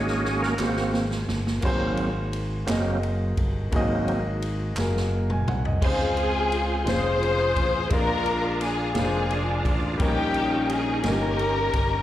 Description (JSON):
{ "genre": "slow gospel", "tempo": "57 BPM (dotted quarters)", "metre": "6/8", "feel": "straight", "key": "unclear", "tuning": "A4 = 440 Hz", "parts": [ { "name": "warm concert grand piano", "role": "accompaniment", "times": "0.0-12.0 s", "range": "Ab2 to Ab5", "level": "-30 LUFS", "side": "left 2 dB", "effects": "none" }, { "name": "bright tonewheel organ", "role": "sustained chords", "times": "0.0-12.0 s", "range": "Gb3 to Db6", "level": "-30 LUFS", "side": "right 2 dB", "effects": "fast rotary speaker, chorus vibrato" }, { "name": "fingered electric bass", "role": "bass", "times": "0.0-12.0 s", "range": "F1 to Db2", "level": "-28 LUFS", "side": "equal", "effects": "none" }, { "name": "swinging big-band drum kit", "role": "drums", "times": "0.1-11.9 s", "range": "crash cymbal, kick drum, ride cymbal, snare drum, toms", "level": "-30 LUFS", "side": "equal", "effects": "none" }, { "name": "group handclap", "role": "percussion", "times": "0.6-5.1 s", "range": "none", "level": "-35 LUFS", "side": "right 2 dB", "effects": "none" }, { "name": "warm studio string section", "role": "melody", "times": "5.8-12.0 s", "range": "C4 to C5", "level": "-24 LUFS", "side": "left 2 dB", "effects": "slapback echo" } ], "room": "light reverb", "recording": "live gig heard through the venue's PA, recital hall reverb", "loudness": "-22 LUFS", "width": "side -13 dB against mid", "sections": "0.0-1.6 A section; 1.6-5.8 B section; 5.8-12.0 C section", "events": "drum fill 0.0-1.6, 4.8-5.8; tonewheel organ solo 0.0-1.6, 1.6-5.8", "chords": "0.0 Ab7sus4; 0.6 Ab9; 5.8 Dbmaj7; 7.9 Bb7; 10.0 Eb7/Bb", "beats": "0.59 | 1.64 2.68 | 3.73 4.78 | 5.82 6.87 | 7.92 8.96 | 10.01 11.06" }